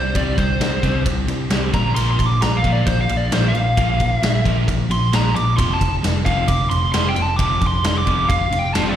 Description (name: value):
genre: quiet-loud alternative rock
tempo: 132 BPM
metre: 4/4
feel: straight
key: unclear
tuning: A4 = 440 Hz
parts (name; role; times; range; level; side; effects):
- biting lead guitar; melody; 0.0-9.0 s; F4 to D6; -22 LUFS; right 1 dB; overdrive, slapback echo, analog delay
- twelve-string electric guitar; arpeggios; 0.0-2.0 s; Bb2 to G4; -30 LUFS; left 3 dB; none
- crunchy overdriven guitar; riff; 0.0-9.0 s; F2 to C4; -25 LUFS; equal; slapback echo
- picked electric bass; bass; 0.0-9.0 s; F1 to C2; -20 LUFS; equal; none
- big rock drum kit; drums; 0.1-8.9 s; kick drum, ride cymbal, snare drum; -21 LUFS; equal; none
room: studio ambience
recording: live gig heard through the venue's PA, recital hall reverb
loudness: -16 LUFS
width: side -10 dB against mid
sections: 0.0-9.0 A section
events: lead electric guitar solo 0.0-9.0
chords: 0.0 Csus2; 1.7 Bbsus2; 5.6 F5